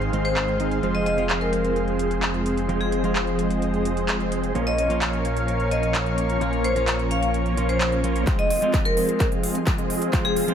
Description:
EDM, festival progressive house; 129 BPM; 4/4; straight; F minor; A4 = 439 Hz
clean electric guitar; accompaniment; 0.0-10.5 s; Ab2 to F4; -28 LUFS; right 3 dB; sidechain pumping
lush unison pad; sustained chords; 0.0-10.5 s; Ab4 to Db6; -31 LUFS; left 1 dB; chorus, sidechain pumping
supersaw chords; riff; 0.0-10.5 s; Eb3 to Eb5; -26 LUFS; equal; phaser, sidechain pumping, low-pass filter, digital delay
wide detuned saw bass; bass; 0.0-10.5 s; F1 to Bb1; -29 LUFS; left 1 dB; chorus, sidechain pumping, high-pass filter
big-room dance drum kit; drums; 0.0-10.5 s; handclaps, hi-hat; -29 LUFS; equal; low-pass filter on hats, low-pass filter on snare, low-pass filter on room
vibraphone with hard mallets; melody; 0.2-10.5 s; Ab4 to F5; -26 LUFS; left 1 dB; digital delay
electronic kick drum; drums; 8.3-10.2 s; -23 LUFS; left 1 dB; overdrive
light reverb; -20 LUFS; side -8 dB against mid
0.0-8.3 A section; 8.3-10.5 B section
build-up 8.3-10.5; drum fill 8.3-10.5; filter sweep 8.3-10.5
0.0 Ab; 0.8 Fm; 4.6 Bbm; 8.3 Fm

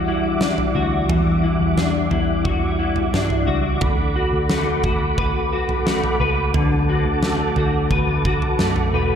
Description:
dream pop; 88 BPM; 4/4; straight; B minor; A4 = 440 Hz
mellow tonewheel organ; sustained chords; 0.0-9.2 s; G3 to D6; -24 LUFS; right 1 dB; chorus vibrato, slow rotary speaker
clean electric guitar; arpeggios; 0.0-9.2 s; D3 to B4; -21 LUFS; left 3 dB; ensemble chorus, digital delay
vintage muted picked electric bass; bass; 0.0-9.2 s; E1 to G2; -24 LUFS; right 1 dB
huge arena drum kit; drums; 0.4-8.9 s; kick drum, snare drum, toms; -23 LUFS; right 1 dB
moderate concert hall reverb, RT60 2.0 s; dark, warm production; -17 LUFS; side -8 dB against mid
0.0-9.2 A section
0.0 Em9; 3.8 Bm7

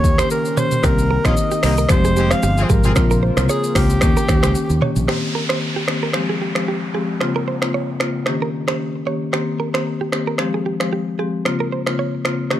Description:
afrobeats; 113 BPM; 4/4; swing 55% on 16ths; F minor; A4 = 439 Hz
breathy alto saxophone; melody; 0.0-4.8 s; G4 to F5; -22 LUFS; equal; ping-pong delay
marimba with medium hard mallets; accompaniment; 0.0-12.6 s; Db3 to G4; -22 LUFS; left 3 dB
hollow soft pad; sustained chords; 0.0-5.1 s; C3 to C5; -29 LUFS; right 2 dB; chorus
fingered electric bass; bass; 0.0-5.1 s; F1 to Eb2; -18 LUFS; equal
afro-pop drum kit; drums; 0.0-12.6 s; finger snaps, hi-hat, kick drum, rim click, shaker, toms; -20 LUFS; equal; overdrive
direct-recorded clean electric guitar; riff; 0.2-12.1 s; G4 to Db5; -27 LUFS; right 7 dB; ping-pong delay
warm horn section; second line; 1.2-2.9 s; Ab3 to Ab4; -27 LUFS; left 2 dB
downlifter; sound effects; 5.1-9.3 s; -30 LUFS; equal
digital ambience; -16 LUFS; side -12 dB against mid
0.0-5.1 A section; 5.1-12.6 B section
0.0 Eb7; 0.8 Cm7; 1.9 Fmadd9; 3.0 Bbmadd9; 4.0 Eb7; 5.1 Cm7; 6.1 Fmadd9; 7.2 Bbmadd9; 8.3 Eb7; 9.3 Cm7; 10.4 Fmadd9; 11.5 Bbmadd9

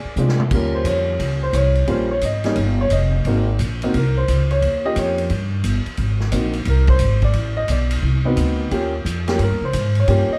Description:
jazz piano trio; 176 BPM; 4/4; swing 65% on 8ths; Eb mixolydian; A4 = 439 Hz
dark baby grand piano; melody; 0.0-10.4 s; G3 to Eb5; -24 LUFS; equal
upright bass; bass; 0.0-10.3 s; F1 to C3; -21 LUFS; equal
swinging big-band drum kit; drums; 0.2-10.2 s; crash cymbal, hi-hat, kick drum, ride cymbal, snare drum, toms; -29 LUFS; equal
light reverb; dark, warm production; -19 LUFS; mono
0.5-10.4 A section
drum fill 0.2-0.5; grand piano solo 0.5-10.4
0.0 Bb9 (rootless); 0.5 Eb9; 3.3 Ab9; 4.6 Eb9; 6.0 Abadd9; 7.4 Adim7; 8.7 Eb9

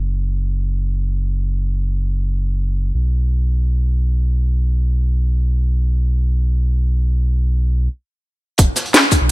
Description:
liquid drum and bass; free time; A4 = 440 Hz
sub bass with octave; bass; 0.0-9.3 s; E1 to B1; -16 LUFS; equal
crunchy breakbeat drum kit; drums; 8.6-9.2 s; hi-hat, snare drum; -22 LUFS; equal; high-pass filter on hats, high-pass filter on snare, high-pass filter on room
electronic kick drum; drums; 8.6-9.2 s; -15 LUFS; equal
garage drum kit; drums; 8.6-9.2 s; hi-hat, shaker, snare drum; -12 LUFS; equal
little or no reverb; -16 LUFS; side -19 dB against mid
0.0-8.6 A section
stop 7.9-8.6

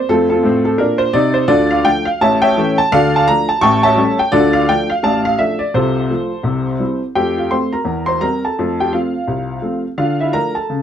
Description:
jazz, stride piano; 170 BPM; 4/4; swing 61% on 8ths; F major; A4 = 440 Hz
warm upright piano; solo; 0.0-10.8 s; A1 to C#6; -13 LUFS; equal
moderate club ambience, RT60 0.5 s; -13 LUFS; side -9 dB against mid
0.0-7.2 A section; 7.2-10.8 B section
0.1 F; 1.5 Dm; 2.2 A7; 2.9 Dm; 3.6 A7; 4.3 Dm; 5.7 F/C; 6.4 C; 7.2 F; 7.9 C7/E; 8.6 F; 10.0 Dm

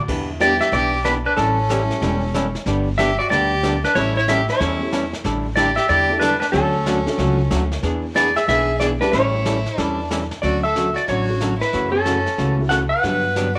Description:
country, western swing; 185 BPM; 4/4; swing 63% on 8ths; D major; A4 = 438 Hz
archtop guitar, miked and amplified; accompaniment; 0.1-13.5 s; C#3 to A4; -26 LUFS; equal
upright bass; bass; 0.1-13.6 s; E1 to G2; -26 LUFS; equal; tube saturation
jazz brush drum kit; drums; 0.1-13.6 s; brushed snare drum, crash cymbal, hi-hat, kick drum, snare drum; -32 LUFS; equal
clean lap steel guitar; melody; 0.4-13.6 s; A4 to F#5; -22 LUFS; equal
clear fiddle; second line; 0.4-13.6 s; C#4 to B4; -28 LUFS; equal
dark upright piano; accompaniment; 0.4-2.2, 4.8-13.2 s; G3 to A4; -31 LUFS; equal
moderate spring reverb, RT60 1.3 s, studio reverb; -19 LUFS; mono
0.1-10.4 A section; 10.4-13.6 B section
0.1 Em7; 1.4 A7; 2.7 G; 4.0 A7; 5.2 A7sus4; 6.5 Dmaj7; 7.8 E7; 9.1 A7; 10.4 Dmaj7; 11.7 F#m7; 13.0 Gmaj7

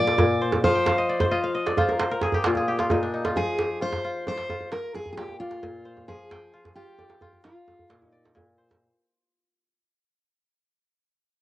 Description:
west african traditional, West African string and xylophone music; 88 BPM (dotted quarters); 12/8; straight; F dorian; A4 = 442 Hz
fingerpicked steel-string acoustic guitar; melody; 0.0-8.3 s; F4 to D5; -27 LUFS; equal; cassette tape
kora; arpeggios; 0.0-9.8 s; Bb2 to G5; -25 LUFS; left 2 dB; cassette tape
djembe; percussion; 0.1-8.8 s; -27 LUFS; right 2 dB
moderate spring reverb, RT60 1.3 s, small room ambience; home recording on cassette; -22 LUFS; side -15 dB against mid
0.0-8.8 A section
fade-out 0.0-8.8; kora fill 0.6-3.4
0.0 Bb; 0.6 F5; 2.0 N.C.; 3.4 Fm; 4.7 Bb; 6.1 Fm; 7.4 Bb

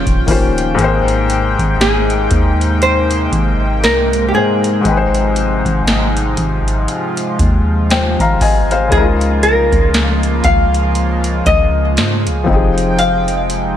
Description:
contemporary R&B; 59 BPM; 4/4; swing 58% on 16ths; F minor; A4 = 441 Hz
hollow-body jazz guitar; melody; 0.0-13.8 s; G4 to F5; -17 LUFS; left 1 dB; tape echo
felt-muted upright piano; accompaniment; 0.0-13.8 s; Ab2 to Bb5; -18 LUFS; left 4 dB
chorused pulse-width pad; sustained chords; 0.0-13.8 s; C3 to G5; -20 LUFS; right 2 dB
soft 808-style bass; bass; 0.0-13.7 s; Eb1 to Ab2; -17 LUFS; equal
booming analog drum machine; drums; 0.1-13.8 s; hi-hat, kick drum, snare drum; -17 LUFS; equal
light reverb, digital ambience; -12 LUFS; side -10 dB against mid
0.0-13.8 A section
0.0 Eb13; 0.8 Abmaj9; 4.8 Fm9/Ab; 8.9 Db6; 12.5 Fm9

